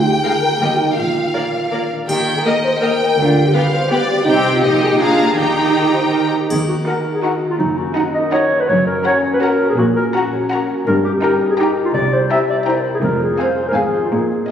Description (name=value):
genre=cinematic, playful, whimsical film cue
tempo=165 BPM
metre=3/4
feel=straight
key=Eb major, Eb minor from 6.5 s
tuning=A4 = 439 Hz
part: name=clear chamber violin section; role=second line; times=0.0-14.0 s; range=D5 to G5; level=-22 LUFS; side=left 1 dB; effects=none
part: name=mellow French horn section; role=sustained chords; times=0.0-6.3 s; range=D4 to C5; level=-19 LUFS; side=equal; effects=none
part: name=concert harp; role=arpeggios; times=0.0-14.5 s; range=F2 to Bb5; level=-22 LUFS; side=left 3 dB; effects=none
part: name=rich chamber cello section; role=bass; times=0.0-14.4 s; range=D2 to Eb3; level=-22 LUFS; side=right 2 dB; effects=none
part: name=warm studio double bass section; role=bass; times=0.0-14.4 s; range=F1 to Eb2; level=-28 LUFS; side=right 2 dB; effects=none
part: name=rich chamber violin section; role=melody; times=0.2-14.0 s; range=D5 to Bb5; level=-26 LUFS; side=left 3 dB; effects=none
part: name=rich chamber viola section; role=accompaniment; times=0.2-14.0 s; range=G3 to Bb4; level=-23 LUFS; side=right 2 dB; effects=none
part: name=triangle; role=percussion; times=2.1-2.8, 6.5-7.2 s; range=none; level=-34 LUFS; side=left 1 dB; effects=none
part: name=dark clarinet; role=second line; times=5.9-14.5 s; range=Eb4 to E5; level=-18 LUFS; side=equal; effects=none
room=wet concert hall reverb, RT60 2.2 s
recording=recorded on a phone in the room, studio reverb, compression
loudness=-14 LUFS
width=side -8 dB against mid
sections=0.0-6.5 A section; 6.5-14.5 B section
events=none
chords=0.0 Bb7/D; 0.6 Eb; 1.0 Bb; 2.1 Eb; 3.2 G7/D; 4.3 Cm; 4.6 Eb/Bb; 5.0 Bb7; 5.4 Eb; 6.5 Ebm; 7.6 Ebm/Gb; 8.7 Gb; 9.8 Gb/Bb; 10.9 Eb/G; 11.9 C7; 13.0 Fm; 13.8 Fm/Ab